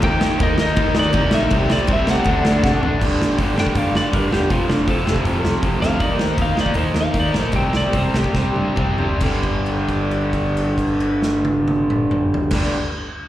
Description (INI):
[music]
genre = punk rock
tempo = 134-162 BPM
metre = 4/4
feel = straight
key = unclear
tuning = A4 = 440 Hz
[part]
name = lightly driven lead guitar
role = melody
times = 0.0-8.6 s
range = D4 to G5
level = -24 LUFS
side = equal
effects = slapback echo
[part]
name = cranked stack guitar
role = riff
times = 0.0-12.7 s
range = F2 to Eb4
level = -25 LUFS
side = right 7 dB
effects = overdrive, slapback echo
[part]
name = raw garage guitar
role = riff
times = 0.0-12.7 s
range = F2 to Eb4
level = -21 LUFS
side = left 2 dB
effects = overdrive, slapback echo
[part]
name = picked electric bass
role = bass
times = 0.0-12.7 s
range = E1 to C3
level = -23 LUFS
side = equal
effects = none
[part]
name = loose indie drum kit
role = drums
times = 0.0-12.6 s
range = crash cymbal, hi-hat, kick drum, snare drum, toms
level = -22 LUFS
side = equal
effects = none
[sound]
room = studio reverb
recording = live gig heard through the venue's PA, recital hall reverb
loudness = -16 LUFS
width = side -13 dB against mid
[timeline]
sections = 0.0-3.0 A section; 3.0-9.2 B section; 9.2-12.8 C section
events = drum fill 2.6-3.0, 8.4-9.2; lead electric guitar solo 3.0-9.2; slowing down 6.0-9.2; held note 9.2-12.5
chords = 0.0 Eb; 1.5 C5; 2.3 D; 3.0 G5; 4.5 F; 6.0 Eb5; 7.5 C5; 9.2 G5